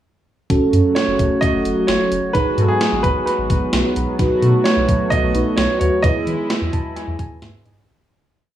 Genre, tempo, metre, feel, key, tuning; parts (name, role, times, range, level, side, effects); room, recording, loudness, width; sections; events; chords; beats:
synth-pop; 130 BPM; 4/4; straight; F# dorian; A4 = 440 Hz
mellow FM electric piano; accompaniment; 0.5-7.9 s; C#4 to A5; -22 LUFS; right 2 dB; chorus, dub echo
brassy analog pad; sustained chords; 0.5-7.9 s; C#3 to F#4; -22 LUFS; equal; chorus, tremolo
round analog bass; bass; 0.5-7.7 s; F#1 to E3; -21 LUFS; equal
gated 80s digital drum machine; drums; 0.5-7.8 s; hi-hat, kick drum, snare drum; -21 LUFS; equal; gated reverb, gated reverb snare, dub echo
warm grand piano; melody; 0.9-7.4 s; G#4 to D#5; -21 LUFS; right 2 dB; dub echo
moderate spring reverb, RT60 1.3 s; echo-heavy mix, small room ambience; -15 LUFS; side -11 dB against mid
0.5-7.9 verse
fade-out 6.0-7.9; FM electric piano fill 6.5-7.9
0.5 F#m; 2.3 G#m7; 4.2 B7; 6.0 Emaj7
| 0.50 0.96 1.42 1.89 | 2.35 2.81 3.27 3.73 | 4.19 4.66 5.12 5.58 | 6.04 6.50 6.96 7.42